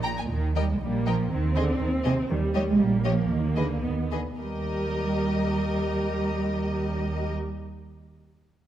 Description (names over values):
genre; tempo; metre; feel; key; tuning
quick classical-period movement for string orchestra; 104-122 BPM; 2/4; rubato; Eb major; A4 = 440 Hz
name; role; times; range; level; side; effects
warm studio violin section; melody; 0.0-7.3 s; Eb5 to Bb5; -37 LUFS; left 5 dB; none
rich chamber violin section; second line; 0.0-7.3 s; G4 to Ab5; -35 LUFS; left 3 dB; none
rich chamber double bass section; bass; 0.0-7.3 s; Bb1 to Eb2; -29 LUFS; right 2 dB; none
warm chamber cello section; bass; 0.0-7.3 s; Bb2 to Ab3; -28 LUFS; right 2 dB; none
warm chamber viola section; accompaniment; 0.8-7.3 s; G3 to G4; -31 LUFS; right 1 dB; none
room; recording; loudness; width
light reverb; none; -24 LUFS; side -11 dB against mid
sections
0.3-4.4 A section; 4.4-6.6 B section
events
slowing down 1.8-4.4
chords
0.3 Eb; 1.3 Ab/Eb (rootless); 2.3 Eb; 3.3 Abm/Eb (rootless); 4.4 Eb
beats
| 0.30 0.82 | 1.31 1.81 | 2.30 2.80 | 3.31 3.84 | 4.40 4.94 | 5.48 6.02